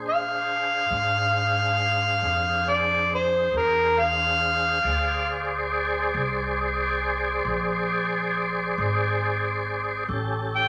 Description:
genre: slow blues.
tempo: 46 BPM (dotted quarters).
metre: 12/8.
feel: straight.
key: unclear.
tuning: A4 = 438 Hz.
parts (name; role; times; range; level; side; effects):
tonewheel organ; sustained chords; 0.0-10.7 s; C#4 to D5; -29 LUFS; equal; slow rotary speaker, overdrive, chorus vibrato.
upright bass; bass; 0.0-10.7 s; Ab1 to Bb2; -33 LUFS; equal; none.
overdriven harmonica; melody; 0.1-10.7 s; Bb4 to G5; -24 LUFS; equal; none.
room: moderate large studio reverb, RT60 1.0 s.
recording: none.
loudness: -24 LUFS.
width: mono.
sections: 0.0-10.7 A section.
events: none.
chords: 0.0 Bb7; 10.1 A7.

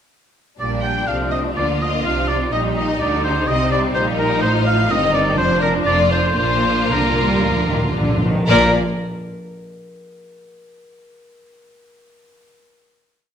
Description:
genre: quick classical-period movement for symphony orchestra.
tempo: 112-128 BPM.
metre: 4/4.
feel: rubato.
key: Bb major.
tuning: A4 = 440 Hz.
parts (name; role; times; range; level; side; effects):
rich studio violin section; melody; 0.6-8.8 s; C4 to D5; -24 LUFS; left 5 dB; none.
warm oboe; second line; 0.6-8.7 s; Bb4 to G5; -21 LUFS; right 1 dB; none.
warm studio violin section; second line; 0.6-8.8 s; Bb4 to G5; -24 LUFS; left 4 dB; none.
rich studio viola section; accompaniment; 0.6-8.8 s; Eb3 to F4; -23 LUFS; right 1 dB; none.
rich studio cello section; bass; 0.6-8.8 s; F2 to G3; -24 LUFS; right 2 dB; none.
rich studio double bass section; bass; 0.6-8.8 s; F1 to D2; -24 LUFS; right 2 dB; none.
timpani; percussion; 6.4-8.7 s; Bb2; -23 LUFS; equal; none.
room: wet recital hall reverb, RT60 1.4 s.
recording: none.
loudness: -15 LUFS.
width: side -8 dB against mid.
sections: 0.6-8.5 A section; 8.5-10.5 final chord.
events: timpani fill 6.4-8.5.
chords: 0.6 Bb; 2.5 Cm7/Bb; 4.4 F7/A; 5.4 Bb/F; 5.9 F; 6.4 Bb; 8.5 Bb5.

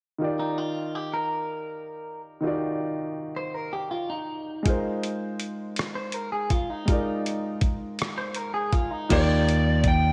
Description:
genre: slow six-eight R&B.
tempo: 54 BPM (dotted quarters).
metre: 6/8.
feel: straight.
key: Eb major.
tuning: A4 = 439 Hz.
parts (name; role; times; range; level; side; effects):
warm grand piano; accompaniment; 0.2-10.1 s; Eb3 to D5; -32 LUFS; equal; none.
clean electric guitar; second line; 0.4-10.0 s; Eb4 to C5; -34 LUFS; equal; none.
dusty soul sampler-style drum kit; drums; 4.7-10.0 s; crash cymbal, hi-hat, kick drum, rim click; -29 LUFS; equal; none.
lead guitar through a small cranked amp; melody; 9.1-10.1 s; D5 to G5; -28 LUFS; equal; overdrive, slapback echo.
fretless electric bass; bass; 9.1-10.1 s; Eb2; -24 LUFS; equal; none.
room: light reverb, digital ambience.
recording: none.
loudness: -27 LUFS.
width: mono.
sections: 0.2-9.1 A section; 9.1-10.1 B section.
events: none.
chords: 0.2 Ebmaj9; 4.7 Ab69; 9.1 Ebmaj9.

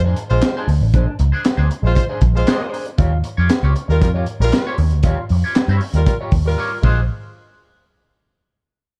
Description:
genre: funk.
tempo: 117 BPM.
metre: 4/4.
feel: straight.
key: unclear.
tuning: A4 = 440 Hz.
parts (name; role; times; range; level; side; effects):
electric guitar at the edge of break-up; accompaniment; 0.0-7.0 s; D4 to Db5; -29 LUFS; equal; wah, lush chorus.
vintage muted picked electric bass; bass; 0.0-7.1 s; A1 to G2; -18 LUFS; equal; none.
crunchy breakbeat drum kit; drums; 0.2-7.0 s; crash cymbal, handclaps, hi-hat, kick drum, snare drum; -22 LUFS; equal; none.
warm horn section; second line; 0.3-7.0 s; G3 to C5; -26 LUFS; equal; none.
room: studio reverb.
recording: dark, warm production.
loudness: -17 LUFS.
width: mono.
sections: 0.0-7.1 A section; 7.1-9.0 B section.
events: drum fill 6.6-7.1.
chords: 0.0 Bb9; 3.0 Eb9; 6.8 Bb9; 7.1 N.C..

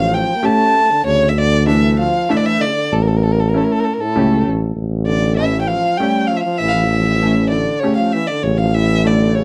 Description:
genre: klezmer.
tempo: 97 BPM.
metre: 3/4.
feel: straight.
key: A phrygian dominant.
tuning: A4 = 440 Hz.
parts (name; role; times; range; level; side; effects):
dark violin; melody; 0.0-9.4 s; A4 to A5; -20 LUFS; equal; none.
warm trombone; second line; 0.0-9.4 s; A2 to Bb3; -25 LUFS; equal; none.
bright upright piano; accompaniment; 0.0-9.4 s; A3 to A4; -20 LUFS; equal; none.
breathy tuba; bass; 0.0-9.4 s; A1 to D2; -19 LUFS; equal; none.
room: light reverb.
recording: dark, warm production.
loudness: -16 LUFS.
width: mono.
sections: 0.0-4.8 A section; 4.8-9.4 B section.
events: speeding up 0.0-9.4; violin solo 4.8-9.4.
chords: 0.0 A; 1.1 D5; 2.9 A.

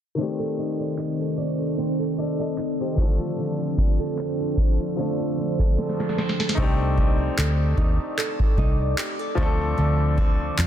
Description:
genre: contemporary R&B.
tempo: 75 BPM.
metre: 4/4.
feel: swing 54% on 16ths.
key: C dorian.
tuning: A4 = 440 Hz.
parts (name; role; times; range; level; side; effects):
clear baby grand piano; accompaniment; 0.1-10.7 s; Eb3 to Eb5; -29 LUFS; left 4 dB; none.
deep dark ambient pad; sustained chords; 0.7-10.7 s; Eb3 to D6; -29 LUFS; equal; chorus, built-in reverb.
nylon-string guitar; arpeggios; 0.2-10.7 s; D3 to D5; -30 LUFS; right 8 dB; digital delay.
booming analog drum machine; drums; 1.0-10.7 s; handclaps, kick drum, snare drum; -22 LUFS; equal; none.
vintage muted fingered electric bass; bass; 6.6-10.7 s; C2 to F2; -23 LUFS; equal; none.
room: little or no reverb.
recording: dense, heavily limited modern master, low-pass filter.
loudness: -21 LUFS.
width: side -10 dB against mid.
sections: 0.2-6.6 A section; 6.6-10.7 B section.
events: filter sweep 0.2-6.6; drum fill 5.8-6.6.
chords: 0.2 Cm69; 3.0 Dm7; 6.2 Cm69; 9.4 Dm7.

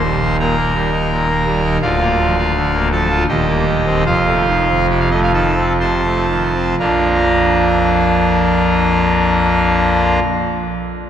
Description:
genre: classical, chorale-style piece for pipe organ.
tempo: 59-85 BPM.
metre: 3/4.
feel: rubato.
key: Bb major.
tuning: A4 = 439 Hz.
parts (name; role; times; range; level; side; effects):
pipe organ, trumpet; solo; 0.0-10.2 s; D1 to C6; -13 LUFS; equal; none.
room: wet cathedral reverb, RT60 4.8 s.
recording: none.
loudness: -13 LUFS.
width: side -9 dB against mid.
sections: 0.0-6.8 A section; 6.8-11.1 B section.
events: slowing down 0.7-6.8.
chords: 0.0 Eb; 1.8 Bb/D; 3.3 Cm7/Eb; 4.1 F7; 6.8 Bb.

